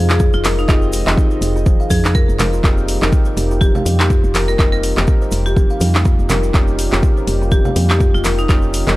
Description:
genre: afro house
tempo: 123 BPM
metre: 4/4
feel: swing 57% on 16ths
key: F minor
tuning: A4 = 440 Hz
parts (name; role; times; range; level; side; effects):
- warm analog pad; sustained chords; 0.0-9.0 s; C3 to G4; -28 LUFS; equal; chorus, sidechain pumping
- woody FM bass; bass; 0.0-9.0 s; F1 to F2; -18 LUFS; equal; sidechain pumping
- marimba with hard mallets; melody; 0.1-8.6 s; Eb4 to Bb4; -23 LUFS; left 1 dB; analog delay
- kalimba; arpeggios; 0.1-9.0 s; C4 to F5; -24 LUFS; left 1 dB; sidechain pumping, analog delay
- deep house drum kit; drums; 0.1-9.0 s; handclaps, hi-hat; -21 LUFS; equal; none
- tube shaker; percussion; 0.1-9.0 s; none; -35 LUFS; right 2 dB; none
- electronic kick drum; drums; 0.2-8.6 s; none; -14 LUFS; equal; none
- congas; percussion; 0.4-9.0 s; none; -24 LUFS; right 2 dB; none
- felt-muted upright piano; stabs; 0.7-9.0 s; Bb3 to Eb5; -24 LUFS; equal; sidechain pumping, analog delay
room: small room ambience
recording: dry, gritty hardware recording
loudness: -12 LUFS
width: side -18 dB against mid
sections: 0.0-9.0 A section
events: none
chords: 0.0 Fm7; 2.6 Cm7/F; 6.5 Eb7/F

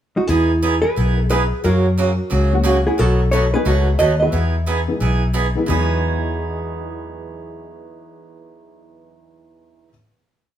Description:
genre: country, western swing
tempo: 178 BPM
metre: 4/4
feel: swing 63% on 8ths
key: E major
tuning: A4 = 439 Hz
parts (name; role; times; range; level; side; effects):
- hollow-body jazz guitar; melody; 0.2-5.3 s; D#4 to E5; -20 LUFS; right 1 dB; none
- picked swing-style acoustic guitar; accompaniment; 0.3-9.9 s; B2 to G#4; -22 LUFS; right 4 dB; none
- vintage muted fingered electric bass; bass; 0.3-9.9 s; B1 to F#2; -19 LUFS; left 1 dB; none
- honky-tonk upright piano; accompaniment; 2.5-9.9 s; E2 to F#4; -25 LUFS; left 3 dB; none
room: moderate large studio reverb, RT60 1.1 s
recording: band playing live in one room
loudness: -15 LUFS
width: side -10 dB against mid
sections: 0.0-0.3 pickup bar; 0.3-5.7 A section; 5.7-8.4 final chord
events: none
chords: 0.3 Emaj7; 1.6 F#; 3.0 B7; 4.3 Emaj7

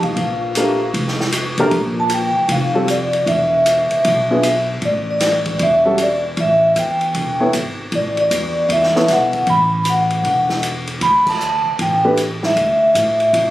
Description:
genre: modal jazz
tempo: 155 BPM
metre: 4/4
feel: swing 64% on 8ths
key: A mixolydian from 4.8 s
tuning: A4 = 441 Hz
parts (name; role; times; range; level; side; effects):
- vibraphone with medium mallets; melody; 0.0-13.5 s; D5 to B5; -16 LUFS; equal; none
- warm baby grand piano; accompaniment; 0.0-9.5, 12.0-12.2 s; F3 to C#5; -18 LUFS; equal; none
- upright bass; bass; 0.0-13.5 s; E1 to A2; -23 LUFS; equal; none
- open jazz drum kit; drums; 0.0-13.5 s; crash cymbal, hi-hat, kick drum, ride cymbal, snare drum; -24 LUFS; equal; none
room: light reverb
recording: recorded on a phone in the room, club reverb, compression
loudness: -14 LUFS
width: side -15 dB against mid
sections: 0.0-4.8 A section; 4.8-13.5 B section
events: band accent 11.2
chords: 0.0 Bbmaj7(no3); 3.3 E5; 4.8 Asus4; 11.0 Dsus2

